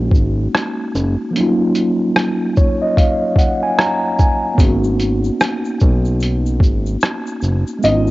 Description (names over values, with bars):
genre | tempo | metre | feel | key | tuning
lo-fi hip hop | 74 BPM | 4/4 | swing 61% on 16ths | G# dorian | A4 = 440 Hz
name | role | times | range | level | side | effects
mellow tine electric piano | accompaniment | 0.0-8.1 s | E#3 to A#5 | -18 LUFS | equal | fast stereo tremolo, low-pass filter, cassette tape
fat analog bass | bass | 0.0-8.1 s | F#1 to B1 | -17 LUFS | equal | none
lo-fi sampler-style drum kit | drums | 0.1-8.1 s | hi-hat, kick drum, rim click, shaker | -16 LUFS | equal | overdrive, cassette tape
egg shaker | percussion | 4.6-8.1 s | none | -41 LUFS | left 8 dB | none
felt-muted upright piano | melody | 7.8-8.1 s | D#5 | -15 LUFS | equal | low-pass filter, cassette tape
room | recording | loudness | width
light reverb | home recording on cassette, nothing above 7.7 kHz | -14 LUFS | side -19 dB against mid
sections
0.0-8.1 A section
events
tine electric piano fill 2.1-4.6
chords
0.0 F#69/G#; 1.3 D#m7; 4.6 G#m11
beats
0.53 | 1.34 2.15 2.96 3.77 | 4.58 5.39 6.20 7.01 | 7.83